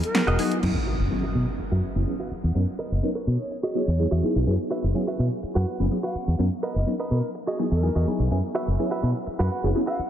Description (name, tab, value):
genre	filtered disco house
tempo	125 BPM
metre	4/4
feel	straight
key	F# mixolydian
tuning	A4 = 439 Hz
part	breathy hollow jazz flute	melody	0.0-10.1 s	A#4 to F#5	-36 LUFS	left 2 dB	low-pass filter, ping-pong delay
part	punchy analog drum machine	drums	0.0-0.7 s	crash cymbal, hi-hat, snare drum	-30 LUFS	equal	none
part	funky polysynth comp	accompaniment	0.1-9.8 s	F#3 to A#4	-28 LUFS	equal	chorus, phaser, low-pass filter
part	direct-recorded clean electric guitar	riff	0.3-10.0 s	F#4 to G#5	-31 LUFS	right 2 dB	spring reverb, low-pass filter
part	modern bright fingered electric bass	bass	0.3-10.0 s	E1 to B2	-23 LUFS	equal	low-pass filter
part	impact	sound effects	0.6-2.6 s	none	-32 LUFS	equal	none
room	moderate cathedral reverb, RT60 5.3 s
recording	dreamy mix soaked in reverb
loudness	-22 LUFS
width	side -10 dB against mid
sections	0.6-10.1 A section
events	impact 0.6-2.6; filter sweep 0.6-10.1; clean electric guitar fill 7.4-8.3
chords	0.0 Emaj9; 0.6 F#7sus4; 2.6 Bmaj7/F#; 3.5 Emaj9; 4.5 F#7sus4; 6.4 Bmaj7/F#; 7.4 Emaj9; 8.3 F#7sus4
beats	0.15 | 0.63 1.11 1.59 2.07 | 2.55 3.03 3.51 3.99 | 4.47 4.95 5.43 5.91 | 6.39 6.87 7.35 7.83 | 8.31 8.79 9.27 9.75